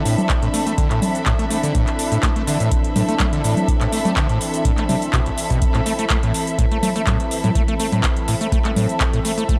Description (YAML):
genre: acid house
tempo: 124 BPM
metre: 4/4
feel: straight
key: A minor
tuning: A4 = 444 Hz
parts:
  - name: warm analog pad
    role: sustained chords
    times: 0.0-9.6 s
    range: E3 to A4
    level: -28 LUFS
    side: equal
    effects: chorus, sidechain pumping
  - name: overdriven acid bass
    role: riff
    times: 0.0-9.6 s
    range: A1 to A3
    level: -25 LUFS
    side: equal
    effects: distortion, subtle chorus, vintage 12-bit sampler grit, sidechain pumping, analog delay
  - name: dark studio string section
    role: texture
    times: 0.0-9.6 s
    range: A4 to B5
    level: -29 LUFS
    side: equal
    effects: sidechain pumping
  - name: booming analog drum machine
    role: drums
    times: 0.1-9.6 s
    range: cabasa, congas, handclaps, hi-hat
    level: -26 LUFS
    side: equal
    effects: none
  - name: electronic kick drum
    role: drums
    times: 0.3-9.6 s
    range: none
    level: -23 LUFS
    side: equal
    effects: none
room: light reverb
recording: dry, gritty hardware recording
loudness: -19 LUFS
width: mono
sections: 0.0-9.6 A section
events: none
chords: 0.0 Am